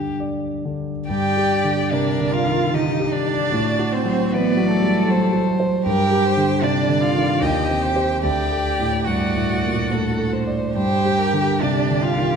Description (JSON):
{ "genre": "classical, slow romantic movement for piano quartet", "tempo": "66-79 BPM", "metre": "3/4", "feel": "rubato", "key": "G minor", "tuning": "A4 = 441 Hz", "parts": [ { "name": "rich violin", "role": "melody", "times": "0.0-12.4 s", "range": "G4 to G5", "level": "-25 LUFS", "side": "left 5 dB", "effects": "none" }, { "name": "warm concert grand piano", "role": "accompaniment", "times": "0.0-12.4 s", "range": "D2 to D5", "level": "-20 LUFS", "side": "right 1 dB", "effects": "none" }, { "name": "rich cello", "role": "second line", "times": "1.1-12.4 s", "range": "A3 to G4", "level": "-24 LUFS", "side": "right 6 dB", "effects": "none" }, { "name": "warm violin", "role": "second line", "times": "1.1-12.4 s", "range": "F#4 to Eb5", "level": "-27 LUFS", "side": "left 1 dB", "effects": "none" } ], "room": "wet concert hall reverb, RT60 1.9 s", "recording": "none", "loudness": "-17 LUFS", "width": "side -6 dB against mid", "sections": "0.0-1.1 A section; 1.1-12.4 A section", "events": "none", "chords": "0.0 G5; 1.1 Gm; 3.5 F#dim/A; 5.9 G5; 7.4 Cm/Eb; 8.2 D; 10.8 G5" }